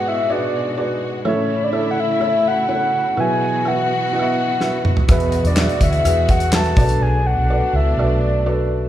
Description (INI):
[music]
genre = piano-driven pop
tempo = 125 BPM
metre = 4/4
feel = straight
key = unclear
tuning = A4 = 442 Hz
[part]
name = soft octave-layered synth lead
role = melody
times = 0.0-8.7 s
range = B4 to A5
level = -20 LUFS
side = left 1 dB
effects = chorus
[part]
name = felt-muted upright piano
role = accompaniment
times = 0.0-8.9 s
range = G#2 to F#5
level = -22 LUFS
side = right 1 dB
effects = none
[part]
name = dark studio string section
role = sustained chords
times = 0.0-8.9 s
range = B2 to F#4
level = -27 LUFS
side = left 1 dB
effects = none
[part]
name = damped 70s drum kit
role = drums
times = 4.6-7.0 s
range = handclaps, hi-hat, kick drum, snare drum, toms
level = -17 LUFS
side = equal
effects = none
[part]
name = vintage muted fingered electric bass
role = bass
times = 5.1-8.9 s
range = B1 to E2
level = -18 LUFS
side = equal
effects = none
[part]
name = group handclap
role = percussion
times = 5.6-6.6 s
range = none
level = -35 LUFS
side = left 6 dB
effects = none
[sound]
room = moderate recital hall reverb, RT60 1.6 s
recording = recorded in a church or concert hall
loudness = -15 LUFS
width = side -12 dB against mid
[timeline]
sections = 0.0-8.9 A section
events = drum fill 4.6-5.1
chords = 0.0 G#m7b5; 1.3 A; 3.2 Bsus4; 5.1 Eadd9; 6.8 Bm7